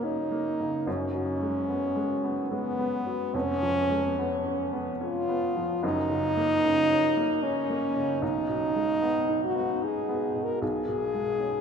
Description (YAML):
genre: classical, romantic duo for French horn and grand piano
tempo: 74 BPM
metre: 3/4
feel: uneven beats, rubato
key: F# major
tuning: A4 = 442 Hz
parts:
  - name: warm French horn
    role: melody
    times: 0.0-11.6 s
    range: B3 to A#4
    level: -26 LUFS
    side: equal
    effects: none
  - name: warm baby grand piano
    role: accompaniment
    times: 0.0-11.6 s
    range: E#1 to D#4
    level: -31 LUFS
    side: equal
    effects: none
room: wet cathedral reverb, RT60 6.5 s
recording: in a vast, echoing space, nothing above 10.6 kHz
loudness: -25 LUFS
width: side -6 dB against mid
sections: 0.0-11.6 A section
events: none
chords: 0.0 F#; 0.9 G#m7/F#; 3.3 C#7/E#; 5.8 F#; 8.2 G#m/B; 10.6 C#7(no3)/B